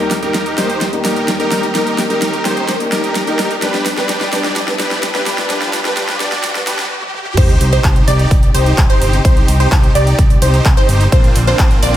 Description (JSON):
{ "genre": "EDM, festival progressive house", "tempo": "128 BPM", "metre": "4/4", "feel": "straight", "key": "C minor", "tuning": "A4 = 441 Hz", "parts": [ { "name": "felt-muted upright piano", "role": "accompaniment", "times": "0.0-6.9 s", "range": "G2 to B4", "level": "-21 LUFS", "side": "left 2 dB", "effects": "sidechain pumping, digital delay" }, { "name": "warm symphonic string section", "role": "sustained chords", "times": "0.0-12.0 s", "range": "Eb2 to B4", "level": "-24 LUFS", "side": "equal", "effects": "sidechain pumping" }, { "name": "supersaw chords", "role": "riff", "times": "0.0-12.0 s", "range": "Bb3 to D5", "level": "-19 LUFS", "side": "right 1 dB", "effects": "sidechain pumping, digital delay" }, { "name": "riser and sub drop", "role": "sound effects", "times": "0.3-9.2 s", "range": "none", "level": "-24 LUFS", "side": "equal", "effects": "none" }, { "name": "big-room dance drum kit", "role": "drums", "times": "0.1-12.0 s", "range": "crash cymbal, handclaps, hi-hat, snare drum, toms", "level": "-20 LUFS", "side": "right 1 dB", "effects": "none" }, { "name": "wide unison pluck", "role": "arpeggios", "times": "7.4-12.0 s", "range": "C5 to D5", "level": "-20 LUFS", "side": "equal", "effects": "wide subtle chorus, sidechain pumping, digital delay" }, { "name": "fat analog bass", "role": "bass", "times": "7.4-12.0 s", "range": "G1 to C2", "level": "-14 LUFS", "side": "equal", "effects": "sidechain pumping" }, { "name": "electronic kick drum", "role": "drums", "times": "7.4-11.7 s", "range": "none", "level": "-11 LUFS", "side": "equal", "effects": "none" } ], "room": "light reverb", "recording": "high-pass filter", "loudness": "-11 LUFS", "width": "side -12 dB against mid", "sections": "0.0-7.4 A section; 7.4-12.0 B section", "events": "build-up 0.0-7.4; drum fill 0.0-6.9, 7.0-7.4; filter sweep 0.0-7.4; riser 0.3-7.4; stop 6.9-7.4; drop 7.4-12.0; impact 7.4-9.2", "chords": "0.0 Eb; 3.6 G; 7.4 Cm; 11.1 Bbadd9" }